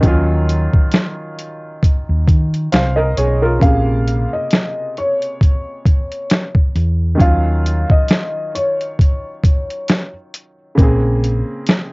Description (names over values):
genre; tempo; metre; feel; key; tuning
lo-fi hip hop; 67 BPM; 4/4; swing 57% on 16ths; unclear; A4 = 440 Hz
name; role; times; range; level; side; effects
clear upright piano; accompaniment; 0.0-11.9 s; C3 to F5; -21 LUFS; right 1 dB; cassette tape, low-pass filter
hollow-body short-scale fingered electric bass; bass; 0.0-11.4 s; Bb1 to Eb3; -16 LUFS; equal; none
boom bap sampler-style drum kit; drums; 0.0-11.9 s; hi-hat, kick drum, snare drum; -13 LUFS; equal; none
felt-muted upright piano; melody; 3.6-10.1 s; Db5 to F5; -22 LUFS; left 1 dB; low-pass filter, cassette tape
room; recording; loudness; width
light reverb; home recording on cassette, nothing above 7.7 kHz; -13 LUFS; side -28 dB against mid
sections
0.0-11.9 A section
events
none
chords
0.0 Ebm9; 3.6 Bbm9; 7.2 Ebm9; 10.8 Bbm9